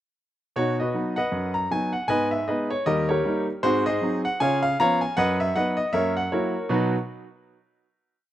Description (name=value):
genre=jazz, stride piano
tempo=156 BPM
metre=4/4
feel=swing 59% on 8ths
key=B major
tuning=A4 = 438 Hz
part: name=clear concert grand piano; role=solo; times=0.6-6.9 s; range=D#2 to A#5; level=-22 LUFS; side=equal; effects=none
room=little or no reverb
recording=recorded outdoors, with no room sound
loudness=-22 LUFS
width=side -12 dB against mid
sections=0.6-6.7 A section; 6.7-8.2 final chord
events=none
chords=0.6 B; 2.1 G#m; 2.9 D#7; 3.6 G#7; 4.4 C#7; 5.2 B/F#; 5.9 F#7; 6.7 B